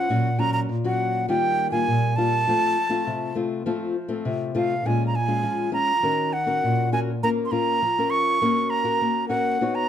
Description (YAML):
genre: samba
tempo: 101 BPM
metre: 4/4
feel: straight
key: Bb minor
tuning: A4 = 440 Hz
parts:
  - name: breathy silver concert flute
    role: melody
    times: 0.0-9.9 s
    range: F5 to Db6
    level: -23 LUFS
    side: right 2 dB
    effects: none
  - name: nylon-string guitar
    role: accompaniment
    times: 0.0-9.9 s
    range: Bb2 to C#5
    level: -24 LUFS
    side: left 3 dB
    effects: none
room: moderate large studio reverb, RT60 0.9 s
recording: dark, warm production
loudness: -21 LUFS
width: side -9 dB against mid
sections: 0.0-9.9 A section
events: none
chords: 0.1 Gb/Bb; 1.3 Ebadd9; 2.5 F; 4.9 Bbm7; 6.0 Ebm7; 7.2 Bbm; 8.4 Gb/Bb